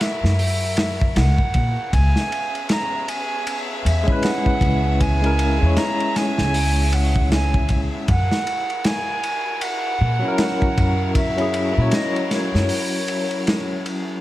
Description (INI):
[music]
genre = trip hop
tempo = 78 BPM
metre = 4/4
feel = swing 60% on 16ths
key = unclear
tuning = A4 = 440 Hz
[part]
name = bright wooden flute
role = melody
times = 0.0-13.8 s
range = C#5 to A#5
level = -25 LUFS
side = right 2 dB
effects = vintage 12-bit sampler grit, tape echo
[part]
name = clear studio violin section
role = sustained chords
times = 0.0-14.2 s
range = B3 to E5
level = -31 LUFS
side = left 2 dB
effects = none
[part]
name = crunchy breakbeat drum kit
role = drums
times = 0.0-14.1 s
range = hi-hat, kick drum, ride cymbal, snare drum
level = -23 LUFS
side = equal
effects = none
[part]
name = upright bass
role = bass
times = 0.2-12.7 s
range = C#2 to A#2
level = -19 LUFS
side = equal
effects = none
[part]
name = barky tine electric piano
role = accompaniment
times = 4.0-14.2 s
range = F#3 to C#5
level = -23 LUFS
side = left 1 dB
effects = overdrive, tremolo
[sound]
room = small room ambience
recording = vinyl crackle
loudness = -18 LUFS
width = side -15 dB against mid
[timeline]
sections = 0.0-14.2 A section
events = break 12.7-14.2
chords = 0.0 F#7; 1.9 C#m7; 8.1 F#7